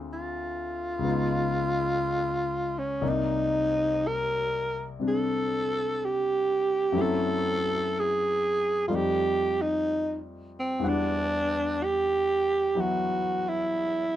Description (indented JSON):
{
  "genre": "jazz",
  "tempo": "62 BPM",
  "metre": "4/4",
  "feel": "swing 69% on 8ths",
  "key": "unclear",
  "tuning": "A4 = 440 Hz",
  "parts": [
    { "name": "warm concert grand piano", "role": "accompaniment", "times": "0.0-14.2 s", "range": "C2 to F#5", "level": "-31 LUFS", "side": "left 3 dB", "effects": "none" },
    { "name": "growling tenor saxophone", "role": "melody", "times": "0.1-14.2 s", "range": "C4 to Bb4", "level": "-26 LUFS", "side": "right 1 dB", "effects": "none" }
  ],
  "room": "light reverb",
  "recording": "dark, warm production",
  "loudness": "-25 LUFS",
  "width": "side -12 dB against mid",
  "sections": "0.0-14.2 A section",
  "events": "none",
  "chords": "0.0 Dm7b5; 1.1 C#9; 3.0 Cm9; 6.9 F#m7b5; 8.9 F13; 10.8 Em9",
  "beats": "0.07 1.05 2.04 | 3.03 4.01 4.99 5.96 | 6.94 7.91 8.88 9.84 | 10.81 11.79 12.76 13.74"
}